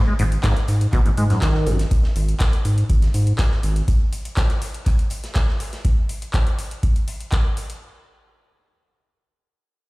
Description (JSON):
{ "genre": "acid house", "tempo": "122 BPM", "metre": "4/4", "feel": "straight", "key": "G# minor pentatonic", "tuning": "A4 = 440 Hz", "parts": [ { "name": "liquid acid bass", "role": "riff", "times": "0.1-1.8 s", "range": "F#2 to G#3", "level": "-23 LUFS", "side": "equal", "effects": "lush chorus, tape echo" }, { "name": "round analog bass", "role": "bass", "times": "0.2-3.8 s", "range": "G#1 to G#2", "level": "-19 LUFS", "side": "equal", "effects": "tube saturation, sidechain pumping" }, { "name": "big rock drum kit", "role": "drums", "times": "0.2-5.8 s", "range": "hi-hat, snare drum", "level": "-39 LUFS", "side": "right 1 dB", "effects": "high-pass filter on hats, high-pass filter on snare, high-pass filter on room" }, { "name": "booming analog drum machine", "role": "drums", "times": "0.2-7.8 s", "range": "handclaps, hi-hat", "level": "-31 LUFS", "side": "left 1 dB", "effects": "none" }, { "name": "electronic kick drum", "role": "drums", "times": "0.4-7.4 s", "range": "none", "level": "-19 LUFS", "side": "equal", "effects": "none" } ], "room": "little or no reverb", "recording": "played on a big sound system in a bare room, stone room reverb", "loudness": "-18 LUFS", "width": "side -22 dB against mid", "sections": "0.0-7.8 A section", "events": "none", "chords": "none" }